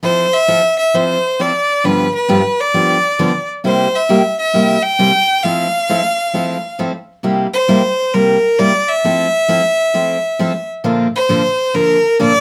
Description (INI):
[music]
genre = country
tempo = 133 BPM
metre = 4/4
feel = swing 66% on 8ths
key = F major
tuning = A4 = 436 Hz
[part]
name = clear fiddle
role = melody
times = 0.0-12.4 s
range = Bb4 to G5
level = -16 LUFS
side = equal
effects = none
[part]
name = picked steel-string acoustic guitar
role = accompaniment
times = 0.0-12.3 s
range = G2 to A4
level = -18 LUFS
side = equal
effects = none
[sound]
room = moderate studio ambience, RT60 0.5 s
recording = none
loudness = -15 LUFS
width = mono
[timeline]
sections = 0.0-7.2 A section; 7.2-12.4 B section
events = none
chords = 0.0 Fmaj7; 1.8 G7; 3.6 C7; 5.4 Fmaj7; 7.2 C7; 9.0 Fmaj7; 10.8 Bbmaj7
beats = | 0.04 0.49 0.94 1.39 | 1.84 2.29 2.74 3.19 | 3.64 4.09 4.54 4.99 | 5.44 5.89 6.34 6.79 | 7.24 7.69 8.14 8.59 | 9.04 9.49 9.94 10.39 | 10.85 11.29 11.75 12.20